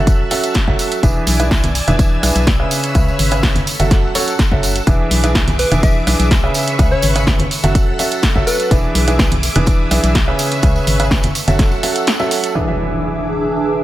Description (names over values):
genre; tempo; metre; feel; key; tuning
piano house; 125 BPM; 4/4; straight; E mixolydian; A4 = 440 Hz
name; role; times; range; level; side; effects
string machine, violins; sustained chords; 0.0-13.8 s; G#4 to F#6; -24 LUFS; equal; ensemble chorus, sidechain pumping
warm concert grand piano; riff; 0.0-13.8 s; C#3 to E5; -19 LUFS; right 2 dB; sidechain pumping, digital delay
organ-like FM bass; bass; 0.0-11.8 s; E1 to C#2; -18 LUFS; equal; sidechain pumping
electronic kick drum; drums; 0.1-11.7 s; none; -15 LUFS; equal; none
punchy analog drum machine; drums; 0.1-12.5 s; hi-hat, snare drum; -20 LUFS; right 1 dB; none
tambourine and congas; percussion; 0.1-12.5 s; none; -23 LUFS; right 2 dB; none
soft struck synth lead; melody; 5.6-8.8 s; B4 to E5; -22 LUFS; left 2 dB; chorus, digital delay
impact; sound effects; 12.6-13.8 s; none; -23 LUFS; equal; none
warbly tape-like pad; texture; 12.9-13.8 s; D4 to E5; -20 LUFS; right 2 dB; chorus, built-in reverb, sidechain pumping
room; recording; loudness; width
little or no reverb; none; -12 LUFS; side -14 dB against mid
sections
0.0-12.6 A section; 12.6-13.8 B section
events
impact 12.6-13.8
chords
0.0 F#m7; 1.0 E7; 2.7 C#m7; 3.7 F#m7; 4.9 E7; 6.6 C#m7; 7.5 F#m7; 8.7 E7; 10.4 C#m7; 11.4 F#m7; 12.6 E7